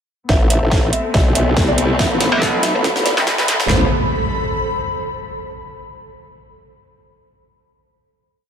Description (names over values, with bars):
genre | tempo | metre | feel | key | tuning
heavy wobble dubstep | 141 BPM | 4/4 | swing 54% on 16ths, half-time | A minor | A4 = 440 Hz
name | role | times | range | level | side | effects
felt-muted upright piano | melody | 0.3-3.9 s | A4 to E5 | -24 LUFS | right 1 dB | ping-pong delay
rich studio string section | sustained chords | 0.3-3.9 s | C3 to C4 | -24 LUFS | left 3 dB | sidechain pumping, low-pass filter
formant-sweep wobble bass | bass | 0.3-3.9 s | A1 to C2 | -18 LUFS | equal | chorus, overdrive
dubstep drum kit | drums | 0.3-3.8 s | handclaps, kick drum, snare drum, toms | -19 LUFS | equal | small room ambience
dubstep drum kit | drums | 0.3-3.7 s | hi-hat, snare drum | -21 LUFS | equal | high-pass filter on snare, small room ambience, high-pass filter on hats
riser and impact | sound effects | 2.0-5.4 s | none | -25 LUFS | right 1 dB | none
ethereal airy pad | texture | 1.5-5.4 s | A4 to B5 | -25 LUFS | equal | ensemble chorus, built-in reverb, sidechain pumping
metallic wobble bass | bass | 2.3-3.6 s | B1 to C2 | -18 LUFS | equal | distortion, chorus, overdrive
room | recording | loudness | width
light reverb | high-pass filter | -14 LUFS | side -8 dB against mid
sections
0.3-3.7 build; 3.7-5.4 final chord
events
build-up 0.3-3.7; drum fill 0.3-3.7; filter sweep on string section 0.3-3.7; filter sweep 0.3-3.7; riser 2.0-3.7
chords
0.3 Amadd9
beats
| 0.29 0.71 1.14 1.57 | 1.99 2.42 2.84 3.27 | 3.69 4.12 4.54 4.97